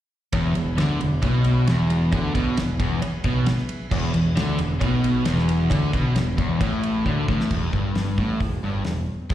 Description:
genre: classic rock.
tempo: 134 BPM.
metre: 4/4.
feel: straight.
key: E mixolydian.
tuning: A4 = 441 Hz.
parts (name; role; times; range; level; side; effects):
overdriven tonewheel organ; sustained chords; 0.3-7.5 s; E4 to B4; -41 LUFS; right 1 dB; none.
crunchy overdriven guitar; riff; 0.3-7.5 s; E2 to D3; -26 LUFS; equal; spring reverb.
overdriven semi-hollow guitar; riff; 0.3-9.3 s; E2 to D3; -27 LUFS; left 5 dB; slapback echo.
sludgy distorted guitar; riff; 0.3-9.3 s; E2 to D3; -28 LUFS; right 6 dB; overdrive, slapback echo.
growling picked electric bass; bass; 0.3-9.3 s; E1 to D2; -25 LUFS; equal; overdrive.
damped 70s drum kit; drums; 0.3-9.3 s; crash cymbal, hi-hat, kick drum, ride cymbal, snare drum; -27 LUFS; equal; none.
cowbell; percussion; 0.3-7.2 s; none; -40 LUFS; equal; slapback echo.
room: moderate club reverb, RT60 0.9 s.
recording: live gig heard through the venue's PA, recital hall reverb.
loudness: -20 LUFS.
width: side -12 dB against mid.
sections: 0.3-7.5 A section; 7.5-9.3 B section.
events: drum fill 7.1-7.5.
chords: 0.3 E; 7.5 E5.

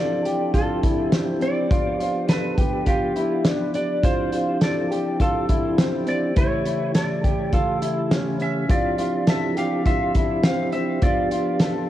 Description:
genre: dream pop.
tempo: 103 BPM.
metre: 4/4.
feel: straight.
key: D dorian.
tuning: A4 = 442 Hz.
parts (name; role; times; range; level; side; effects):
clean lap steel guitar; melody; 0.0-11.9 s; G4 to F5; -28 LUFS; right 1 dB; tape echo.
percussive tonewheel organ; sustained chords; 0.0-11.9 s; C#3 to G4; -25 LUFS; right 1 dB; chorus vibrato, slow rotary speaker, cassette tape.
mellow electric guitar; arpeggios; 0.0-11.9 s; C4 to A4; -26 LUFS; left 2 dB; wide subtle chorus, cassette tape, tape echo.
loose indie drum kit; drums; 0.3-11.7 s; hi-hat, kick drum, snare drum; -22 LUFS; equal; cassette tape.
room: light reverb, small room ambience.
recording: home recording on cassette.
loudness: -19 LUFS.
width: side -13 dB against mid.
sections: 0.0-11.9 A section.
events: none.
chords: 0.0 Dm11; 1.7 G7; 4.0 Dm11; 6.4 A7; 8.7 Dm11; 11.0 G7.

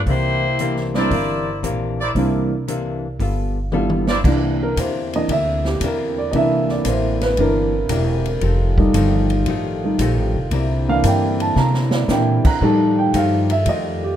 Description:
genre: jazz, big band swing.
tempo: 115 BPM.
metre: 4/4.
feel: swing 69% on 8ths.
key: C mixolydian.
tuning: A4 = 439 Hz.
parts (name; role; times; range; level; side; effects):
upright bass; bass; 0.0-14.2 s; E1 to C3; -21 LUFS; equal; none.
bright saxophone section; melody; 0.1-0.9 s; Bb3 to C5; -22 LUFS; left 2 dB; none.
archtop guitar, miked and amplified; accompaniment; 0.1-14.1 s; C3 to A4; -26 LUFS; left 5 dB; none.
swinging big-band drum kit; drums; 0.1-13.8 s; crash cymbal, hi-hat, kick drum, ride cymbal, snare drum, toms; -24 LUFS; equal; none.
warm grand piano; accompaniment; 0.9-14.2 s; E3 to Bb5; -19 LUFS; right 1 dB; none.
clear trumpet section; stabs; 0.9-4.2 s; E4 to D5; -24 LUFS; right 1 dB; none.
warm trombone section; sustained chords; 4.2-14.2 s; D3 to F4; -28 LUFS; right 1 dB; none.
room: moderate large studio reverb, RT60 1.3 s.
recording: minimal, uncompressed stereo recording.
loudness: -16 LUFS.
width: side -10 dB against mid.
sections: 0.0-4.2 A section; 4.2-14.2 B section.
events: drum fill 3.7-4.2, 11.6-12.1; grand piano solo 4.2-14.2.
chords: 0.1 C9; 3.2 G9; 4.2 C9; 8.4 F9; 10.5 C9; 12.6 F9.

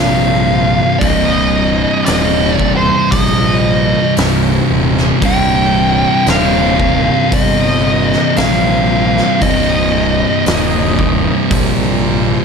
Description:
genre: stoner and doom metal.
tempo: 57 BPM.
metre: 4/4.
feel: straight.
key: C minor.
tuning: A4 = 435 Hz.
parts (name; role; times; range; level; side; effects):
fuzz lead guitar; melody; 0.0-12.4 s; C5 to G5; -16 LUFS; right 1 dB; wah, distortion, slapback echo.
thick fuzz guitar; riff; 0.0-12.4 s; C2 to C3; -16 LUFS; left 11 dB; distortion.
thick fuzz guitar; riff; 0.0-12.4 s; C2 to C3; -17 LUFS; right 10 dB; distortion.
fuzz picked electric bass; bass; 0.0-12.3 s; C1 to Bb1; -18 LUFS; equal; overdrive.
oversized low-tuned drum kit; drums; 1.0-11.8 s; hi-hat, kick drum, snare drum; -19 LUFS; equal; none.
room: light reverb, small room ambience.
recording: none.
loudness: -10 LUFS.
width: side -6 dB against mid.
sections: 0.0-12.4 A section.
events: none.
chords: 0.0 Cm.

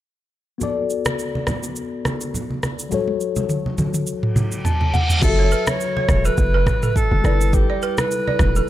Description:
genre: afrobeats.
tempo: 104 BPM.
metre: 4/4.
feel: swing 55% on 16ths.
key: B minor.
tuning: A4 = 437 Hz.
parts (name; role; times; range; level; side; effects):
mellow tine electric piano; accompaniment; 0.6-8.7 s; F#3 to A5; -25 LUFS; left 6 dB; phaser.
afro-pop drum kit; drums; 0.6-8.7 s; crash cymbal, kick drum, rim click, shaker, toms; -22 LUFS; equal; none.
congas; percussion; 0.6-8.5 s; none; -27 LUFS; right 1 dB; none.
reverse cymbal; sound effects; 4.5-5.2 s; none; -27 LUFS; right 1 dB; none.
breathy alto saxophone; melody; 5.2-8.7 s; G4 to C#5; -24 LUFS; right 1 dB; ping-pong delay.
hard-hitting 808-style bass; bass; 5.2-8.6 s; E1 to G1; -18 LUFS; equal; none.
balafon; riff; 5.4-8.6 s; A4 to D5; -26 LUFS; right 10 dB; none.
room: little or no reverb.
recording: dark, warm production.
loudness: -18 LUFS.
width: side -13 dB against mid.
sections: 0.6-5.2 A section; 5.2-8.7 B section.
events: drum fill 2.9-5.2; tine electric piano fill 4.4-5.2; reverse cymbal 4.5-5.2.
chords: 0.6 Bm7; 2.9 F#m; 4.9 N.C.; 5.2 F#m7; 7.2 G69.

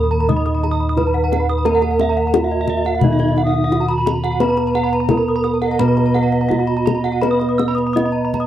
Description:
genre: Balinese gamelan.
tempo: 81-87 BPM.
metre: 4/4.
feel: straight.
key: Eb pelog.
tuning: A4 = 439 Hz.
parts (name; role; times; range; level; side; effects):
gamelan-type bronze metallophone; melody; 0.0-8.5 s; Eb4 to Eb5; -22 LUFS; right 2 dB; none.
gamelan-type bronze metallophone; accompaniment; 0.0-8.5 s; Eb3 to Eb4; -23 LUFS; right 4 dB; none.
gamelan-type bronze metallophone; arpeggios; 0.0-8.5 s; Eb5 to Eb6; -26 LUFS; left 5 dB; none.
gamelan-type bronze metallophone; arpeggios; 0.0-8.4 s; Eb5 to Fb6+20c; -25 LUFS; right 6 dB; none.
gamelan-type bossed gongs; bass; 0.0-8.5 s; Eb2 to Cb5-20c; -19 LUFS; left 1 dB; none.
kendang; percussion; 0.3-8.5 s; none; -22 LUFS; left 6 dB; none.
breathy pan flute; second line; 1.6-7.9 s; Eb5 to Eb6; -28 LUFS; right 2 dB; none.
room: little or no reverb.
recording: dry, close 1970s-style studio recording.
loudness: -15 LUFS.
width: side -11 dB against mid.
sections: 0.0-8.5 A section.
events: none.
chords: none.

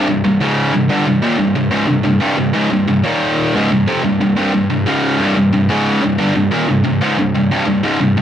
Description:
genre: metal.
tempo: 91 BPM.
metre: 4/4.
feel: straight.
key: C phrygian.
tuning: A4 = 440 Hz.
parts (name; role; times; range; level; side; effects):
high-gain distorted guitar; solo; 0.0-8.2 s; C2 to Eb3; -13 LUFS; equal; distortion.
room: little or no reverb.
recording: dry, close 1970s-style studio recording.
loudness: -13 LUFS.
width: side -10 dB against mid.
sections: 0.0-8.2 A section.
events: none.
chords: 0.0 Cm.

